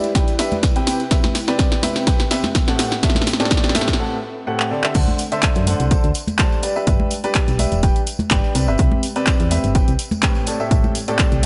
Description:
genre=piano house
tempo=125 BPM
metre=4/4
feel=swing 54% on 16ths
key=unclear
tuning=A4 = 440 Hz
part: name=clear baby grand piano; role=riff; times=0.0-11.5 s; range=A2 to A5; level=-25 LUFS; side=equal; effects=sidechain pumping, tape echo
part: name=solid FM bass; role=bass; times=0.0-11.5 s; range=E1 to F#2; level=-23 LUFS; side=equal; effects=tube saturation, sidechain pumping, high-pass filter
part: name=punchy analog drum machine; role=drums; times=0.0-11.5 s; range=crash cymbal, handclaps, hi-hat, snare drum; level=-24 LUFS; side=equal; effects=none
part: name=tambourine and congas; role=percussion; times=0.0-11.5 s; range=none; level=-31 LUFS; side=equal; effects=none
part: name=ethereal airy pad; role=texture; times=0.0-4.0 s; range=C4 to G5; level=-33 LUFS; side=equal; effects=none
part: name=electronic kick drum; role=drums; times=0.2-11.3 s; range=none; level=-20 LUFS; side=equal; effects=none
room=light reverb, digital ambience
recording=nothing above 10.9 kHz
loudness=-18 LUFS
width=mono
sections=0.0-5.0 A section; 5.0-11.5 B section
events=build-up 0.0-5.0; drum fill 0.0-4.0, 4.6-5.0; break 4.0-5.0; drop 5.0-11.5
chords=0.0 G6; 0.9 Cmaj7; 5.0 D7; 6.6 G6; 8.6 Cmaj7; 10.5 Am7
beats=0.15 0.63 | 1.11 1.59 2.07 2.55 | 3.03 3.51 3.99 4.47 | 4.95 5.43 5.91 6.39 | 6.87 7.35 7.83 8.31 | 8.79 9.27 9.75 10.23 | 10.71 11.19

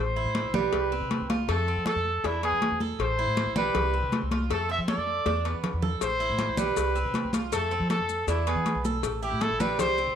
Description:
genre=latin, Cuban son and guajira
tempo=159 BPM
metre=4/4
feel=straight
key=A minor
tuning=A4 = 440 Hz
part: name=warm trumpet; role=melody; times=0.0-10.1 s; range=E4 to E5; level=-29 LUFS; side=left 1 dB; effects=none
part: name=upright bass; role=bass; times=0.0-10.2 s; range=A1 to F3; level=-31 LUFS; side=equal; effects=none
part: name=Cuban tres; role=arpeggios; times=0.2-10.2 s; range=G3 to A4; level=-32 LUFS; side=right 11 dB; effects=none
part: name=congas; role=percussion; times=0.2-10.2 s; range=none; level=-31 LUFS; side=equal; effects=none
part: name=cowbell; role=percussion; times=0.3-10.0 s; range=none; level=-34 LUFS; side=left 11 dB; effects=none
part: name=maracas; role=percussion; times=6.0-10.2 s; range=none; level=-42 LUFS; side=left 11 dB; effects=none
room=moderate echo chamber reverb, RT60 1.5 s, studio reverb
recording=1960s-style stereo with parts hard left and right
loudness=-24 LUFS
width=side -8 dB against mid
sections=0.0-10.2 A section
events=drum fill 5.3-6.0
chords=0.0 Amadd9; 0.7 C5; 1.5 F; 2.2 E7; 3.0 Amadd9; 3.8 C5; 4.5 F; 5.3 E5; 6.0 Amadd9; 6.8 C5; 7.5 F; 8.3 E7; 9.0 A5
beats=0.35 0.73 1.11 | 1.49 1.86 2.24 2.62 | 3.00 3.37 3.75 4.13 | 4.51 4.88 5.26 5.64 | 6.02 6.39 6.77 7.15 | 7.53 7.90 8.28 8.66 | 9.04 9.41 9.79

